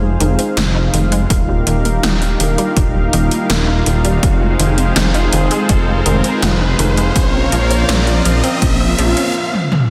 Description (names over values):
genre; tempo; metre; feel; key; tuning
synthwave; 82 BPM; 4/4; straight; F minor; A4 = 439 Hz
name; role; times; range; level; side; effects
warm analog pad; sustained chords; 0.0-9.3 s; Eb4 to F5; -24 LUFS; equal; chorus, sidechain pumping
analog pluck; arpeggios; 0.0-9.3 s; Eb3 to F4; -24 LUFS; equal; chorus, delay
mellow synth brass; stabs; 0.0-9.4 s; G3 to F4; -25 LUFS; equal; chorus, delay
dark detuned saw bass; bass; 0.0-9.1 s; Eb1 to Bb1; -18 LUFS; equal; sidechain pumping
riser; sound effects; 1.5-9.4 s; none; -26 LUFS; equal; none
80s electronic pad drums; drums; 0.2-9.9 s; hi-hat, snare drum, toms; -21 LUFS; equal; gated reverb on snare and toms, overdrive, studio reverb
electronic kick drum; drums; 1.3-8.8 s; none; -19 LUFS; equal; overdrive, studio reverb
room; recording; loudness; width
moderate lush hall reverb, RT60 1.8 s, digital ambience; dense, heavily limited modern master; -14 LUFS; mono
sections
0.0-9.9 A section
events
filter sweep on synth arpeggio sound 0.0-9.9; filter sweep on analog polysynth 0.0-9.9; riser 1.5-9.4; drum fill 9.5-9.9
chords
0.0 Fm7; 1.3 Ebadd9; 4.2 Fm7; 7.2 Bbmadd9